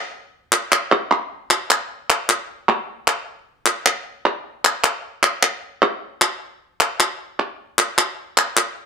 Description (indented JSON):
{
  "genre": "flamenco",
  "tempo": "153 BPM",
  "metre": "4/4",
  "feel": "straight",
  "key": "none",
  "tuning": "none",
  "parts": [
    { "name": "palmas hand claps", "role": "percussion", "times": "0.5-8.8 s", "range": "none", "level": "-17 LUFS", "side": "equal", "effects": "none" }
  ],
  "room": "moderate studio reverb, RT60 0.8 s",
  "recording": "dark, warm production",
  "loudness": "-18 LUFS",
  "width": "side -6 dB against mid",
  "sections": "0.0-1.1 A section; 1.1-8.9 B section",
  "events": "none",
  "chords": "none"
}